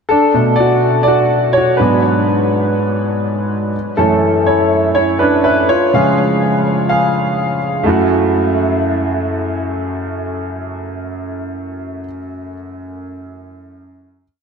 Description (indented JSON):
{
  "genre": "pop",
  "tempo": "124 BPM",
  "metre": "4/4",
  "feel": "straight",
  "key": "F# minor",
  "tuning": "A4 = 439 Hz",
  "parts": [
    { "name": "clear grand piano", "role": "solo", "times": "0.1-14.2 s", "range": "F#2 to E#5", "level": "-13 LUFS", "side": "equal", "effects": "wide subtle chorus, ping-pong delay" }
  ],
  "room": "wet huge ambient reverb, RT60 6.8 s",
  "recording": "dreamy mix soaked in reverb",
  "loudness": "-12 LUFS",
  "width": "side -6 dB against mid",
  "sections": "0.1-7.9 verse; 7.9-11.7 final chord",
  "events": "grand piano solo 0.1-7.9",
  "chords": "0.1 Bm7; 1.8 G#m7b5; 3.7 F#m7; 5.7 C#; 7.9 F#m7",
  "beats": "| 0.10 0.59 1.07 1.56 | 2.04 2.53 3.01 3.50 | 3.98 4.47 4.95 5.44 | 5.92 6.41 6.89 7.38 | 7.86 8.34 8.83 9.31 | 9.79 10.28 10.76 11.24"
}